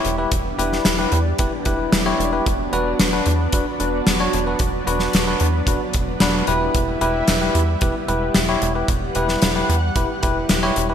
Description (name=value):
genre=synthwave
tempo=112 BPM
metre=4/4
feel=straight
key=E dorian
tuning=A4 = 437 Hz
part: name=analog string pad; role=sustained chords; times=0.0-10.9 s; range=F#3 to F#5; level=-26 LUFS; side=right 1 dB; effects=ensemble chorus, sidechain pumping
part: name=barky tine electric piano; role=stabs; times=0.0-10.9 s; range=D4 to C#5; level=-22 LUFS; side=left 2 dB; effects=medium stereo tremolo, ping-pong delay
part: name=tight sequencer bass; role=bass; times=0.0-10.9 s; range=E1 to E2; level=-24 LUFS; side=right 1 dB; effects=tube saturation
part: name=gated 80s drum kit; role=drums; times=0.0-10.9 s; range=hi-hat, snare drum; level=-21 LUFS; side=left 1 dB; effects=gated reverb
part: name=kick drum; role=drums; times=0.3-10.3 s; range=none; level=-24 LUFS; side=right 1 dB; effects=none
room=moderate lush hall reverb, RT60 2.3 s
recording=bright 1980s-style digital production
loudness=-17 LUFS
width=side -8 dB against mid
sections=0.0-10.9 A section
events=none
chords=0.0 Em; 2.5 Bm/E; 6.7 Em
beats=| 0.32 0.85 1.39 1.92 | 2.46 3.00 3.53 4.07 | 4.60 5.14 5.67 6.21 | 6.75 7.28 7.82 8.35 | 8.89 9.42 9.96 10.49